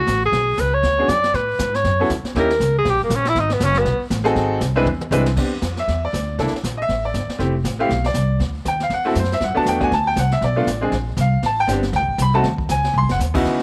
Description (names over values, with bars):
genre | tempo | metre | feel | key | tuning
jazz, small-group swing and bop | 238 BPM | 4/4 | swing 59% on 8ths | unclear | A4 = 440 Hz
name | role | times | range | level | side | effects
breathy tenor saxophone | melody | 0.0-4.0 s | A#3 to D5 | -20 LUFS | equal | none
upright bass | bass | 0.0-13.6 s | F1 to A2 | -24 LUFS | equal | none
jazz brush drum kit | drums | 0.1-13.6 s | brushed snare drum, crash cymbal, hi-hat, kick drum, snare drum, toms | -30 LUFS | equal | none
bright upright piano | accompaniment | 1.0-13.6 s | C#3 to B#5 | -22 LUFS | equal | none
room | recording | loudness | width
light reverb, small room reverb | none | -19 LUFS | mono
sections
0.0-5.4 A section; 5.4-13.5 A section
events
tenor saxophone solo 0.0-5.4; drum fill 4.9-5.4, 12.9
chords
0.3 Bm69; 1.3 A69; 2.3 D#7b9; 3.4 G#m7; 4.4 G#7b9; 4.9 E7b13; 5.4 Dm13; 6.4 C13; 7.4 Fmaj9; 8.4 D7; 9.4 Gmaj9; 10.4 Bm7b5; 10.9 Bbsus2; 11.4 Am11; 12.4 G#7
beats
0.07 | 0.33 0.58 0.83 1.08 | 1.34 1.59 1.84 2.09 | 2.35 2.60 2.85 3.10 | 3.35 3.61 3.86 4.11 | 4.36 4.61 4.87 5.12 | 5.37 5.62 5.87 6.12 | 6.38 6.63 6.88 7.13 | 7.39 7.64 7.89 8.14 | 8.40 8.65 8.90 9.15 | 9.41 9.66 9.91 10.16 | 10.42 10.67 10.92 11.18 | 11.43 11.68 11.94 12.19 | 12.44 12.70 12.95 13.20 | 13.46